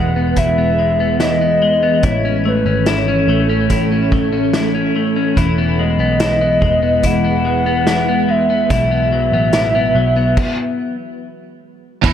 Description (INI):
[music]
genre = dream pop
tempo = 72 BPM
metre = 4/4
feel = straight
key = E major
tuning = A4 = 440 Hz
[part]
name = warbly nostalgic lead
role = melody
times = 0.0-11.2 s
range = B4 to F#5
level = -17 LUFS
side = equal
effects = chorus, ping-pong delay
[part]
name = ethereal airy pad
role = sustained chords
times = 0.0-12.1 s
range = E3 to C#5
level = -21 LUFS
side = right 2 dB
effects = ensemble chorus, built-in reverb
[part]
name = electric guitar at the edge of break-up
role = arpeggios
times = 0.0-12.1 s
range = A2 to E4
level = -18 LUFS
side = left 3 dB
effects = analog chorus, ping-pong delay
[part]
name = vintage muted picked electric bass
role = bass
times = 0.0-12.1 s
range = E1 to E2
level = -20 LUFS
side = right 1 dB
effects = none
[part]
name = vintage drum kit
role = drums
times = 0.4-12.1 s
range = crash cymbal, hi-hat, kick drum, snare drum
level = -20 LUFS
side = right 1 dB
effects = none
[part]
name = cranked stack guitar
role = accompaniment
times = 12.0-12.1 s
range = E2 to E4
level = -14 LUFS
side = right 13 dB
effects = overdrive, tremolo, analog chorus
[sound]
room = moderate plate reverb, RT60 2.3 s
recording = none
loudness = -13 LUFS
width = side -9 dB against mid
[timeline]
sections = 0.0-12.0 A section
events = stop 10.4-12.0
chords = 0.0 E; 2.0 A; 5.4 E; 8.7 Bsus4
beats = 0.37 1.21 | 2.04 2.87 3.71 4.54 | 5.37 6.21 7.04 7.87 | 8.71 9.54 10.37 11.21 | 12.04